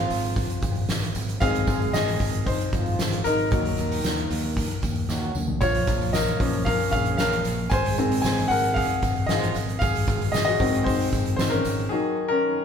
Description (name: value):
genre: piano-driven pop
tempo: 114 BPM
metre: 4/4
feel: straight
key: unclear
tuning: A4 = 440 Hz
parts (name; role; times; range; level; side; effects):
- mellow French horn section; second line; 0.0-12.6 s; Db3 to Ab4; -32 LUFS; right 2 dB; none
- clear baby grand piano; accompaniment; 0.0-12.6 s; Eb3 to Ab5; -25 LUFS; left 2 dB; none
- fingered electric bass; bass; 0.0-11.9 s; Ab1 to Eb2; -29 LUFS; right 1 dB; none
- soft-mallet drum kit; drums; 0.1-11.9 s; hi-hat, kick drum, snare drum, toms; -26 LUFS; equal; none
- tambourine; percussion; 0.1-11.8 s; none; -41 LUFS; right 5 dB; none
room: wet stone room reverb, RT60 0.9 s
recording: band playing live in one room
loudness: -21 LUFS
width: side -7 dB against mid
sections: 0.0-12.6 A section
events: grand piano solo 0.0-12.6; drum fill 5.1-5.6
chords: 0.0 Fm7/Ab; 3.5 Ebm; 5.6 Bbm; 7.7 Fm7/Ab; 9.8 Ab; 11.9 Ebm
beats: 0.37 0.89 | 1.42 1.94 2.47 2.99 | 3.52 4.04 4.57 5.09 | 5.62 6.14 6.67 7.19 | 7.72 8.24 8.77 9.29 | 9.82 10.34 10.87 11.39 | 11.91 12.44